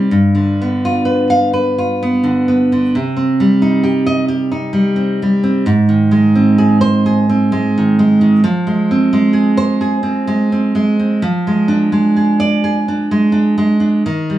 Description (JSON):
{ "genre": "romantic piece for solo classical guitar", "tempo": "64 BPM", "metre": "3/4", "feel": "rubato", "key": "unclear", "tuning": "A4 = 445 Hz", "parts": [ { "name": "nylon-string guitar", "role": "solo", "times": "0.0-14.4 s", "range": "G2 to F5", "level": "-11 LUFS", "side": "right 1 dB", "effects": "none" } ], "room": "moderate studio reverb, RT60 0.8 s", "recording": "none", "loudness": "-11 LUFS", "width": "side -13 dB against mid", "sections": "0.0-14.4 A section", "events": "none", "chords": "0.1 G7; 2.9 Cm; 5.7 Ab; 8.4 Fm; 11.2 Ddim/F" }